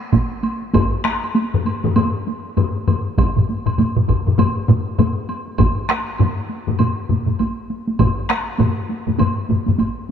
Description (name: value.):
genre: japanese traditional, taiko drum ensemble.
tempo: 99 BPM.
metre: 4/4.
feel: swing 60% on 16ths.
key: none.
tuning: none.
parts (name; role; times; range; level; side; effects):
taiko ensemble; percussion; 0.0-10.1 s; none; -22 LUFS; right 2 dB; none.
taiko ensemble; percussion; 0.1-9.8 s; none; -20 LUFS; right 2 dB; none.
taiko ensemble; percussion; 0.1-10.0 s; none; -22 LUFS; right 1 dB; none.
woodblock; percussion; 0.1-10.0 s; none; -30 LUFS; right 1 dB; none.
taiko ensemble; percussion; 0.7-9.8 s; none; -20 LUFS; left 4 dB; none.
room: light reverb.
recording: none.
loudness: -17 LUFS.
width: side -8 dB against mid.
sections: 0.0-5.6 A section; 5.6-10.1 B section.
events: none.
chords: none.